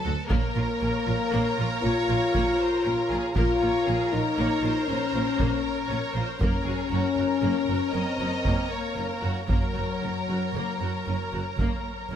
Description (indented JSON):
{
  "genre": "cinematic, epic orchestral film score",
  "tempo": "78 BPM (dotted quarters)",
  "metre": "12/8",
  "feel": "straight",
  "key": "unclear",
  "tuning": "A4 = 440 Hz",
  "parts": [
    { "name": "warm symphonic violin section", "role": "melody", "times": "0.0-12.2 s", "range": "Gb4 to Eb5", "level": "-35 LUFS", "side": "left 2 dB", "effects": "none" },
    { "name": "warm symphonic violin section", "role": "second line", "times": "0.0-12.2 s", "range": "A4 to Bb5", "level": "-33 LUFS", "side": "left 2 dB", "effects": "none" },
    { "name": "rich symphonic viola section", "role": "accompaniment", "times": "0.0-12.2 s", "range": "Bb3 to Bb4", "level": "-33 LUFS", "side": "right 2 dB", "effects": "none" },
    { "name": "dark French horn section", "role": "sustained chords", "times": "0.0-12.2 s", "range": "Gb3 to F4", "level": "-28 LUFS", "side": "left 4 dB", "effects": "none" },
    { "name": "rich symphonic cello section", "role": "bass", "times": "0.1-12.2 s", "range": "D2 to Bb2", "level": "-33 LUFS", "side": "right 2 dB", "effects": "none" },
    { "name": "rich symphonic double bass section", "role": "bass", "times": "0.1-12.2 s", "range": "Gb1 to D2", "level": "-32 LUFS", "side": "right 4 dB", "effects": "none" },
    { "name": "solo taiko drums", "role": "drums", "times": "0.3-12.1 s", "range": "none", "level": "-28 LUFS", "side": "right 1 dB", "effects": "none" }
  ],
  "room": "moderate scoring stage reverb, RT60 2.0 s",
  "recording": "close, detailed microphones",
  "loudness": "-23 LUFS",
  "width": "side -9 dB against mid",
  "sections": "0.0-12.2 A section",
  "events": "none",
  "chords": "0.3 Bbm; 6.4 Gb",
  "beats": "| 0.31 1.07 1.84 2.60 | 3.36 4.12 4.89 5.65 | 6.41 7.17 7.94 8.72 | 9.50 10.29 11.07 11.85"
}